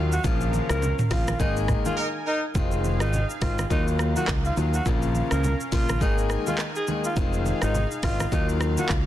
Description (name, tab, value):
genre	afrobeats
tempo	104 BPM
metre	4/4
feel	swing 58% on 16ths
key	Bb minor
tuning	A4 = 436 Hz
part	bright concert grand piano	accompaniment	0.0-8.9 s	Db3 to Ab4	-29 LUFS	left 5 dB	none
part	warm analog pad	sustained chords	0.0-9.1 s	Gb3 to Ab5	-35 LUFS	right 1 dB	chorus, sidechain pumping
part	modern bright fingered electric bass	bass	0.0-9.1 s	F1 to Eb2	-26 LUFS	equal	none
part	growling alto saxophone	melody	0.1-8.9 s	Eb4 to Bb4	-31 LUFS	right 1 dB	none
part	afro-pop drum kit	drums	0.1-9.1 s	handclaps, hi-hat, kick drum, rim click, shaker, toms	-27 LUFS	equal	vintage 12-bit sampler grit, soft clipping on snare
part	congas	percussion	0.2-8.9 s	none	-34 LUFS	right 4 dB	none
part	mellow horn section	second line	2.0-2.4 s	Eb4 to Bb4	-30 LUFS	equal	none
room	light reverb, small room reverb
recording	dense, heavily limited modern master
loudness	-22 LUFS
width	side -12 dB against mid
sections	0.0-9.1 A section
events	band accent 0.2-2.6; break 2.0-2.6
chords	0.2 Bbm; 1.4 Absus2; 2.6 Fm7; 3.7 Ebmadd9; 4.9 Bbm; 6.0 Absus2; 7.2 Fm7; 8.3 Ebmadd9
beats	| 0.24 0.82 1.40 1.98 | 2.55 3.13 3.71 4.28 | 4.86 5.44 6.01 6.59 | 7.17 7.74 8.32 8.90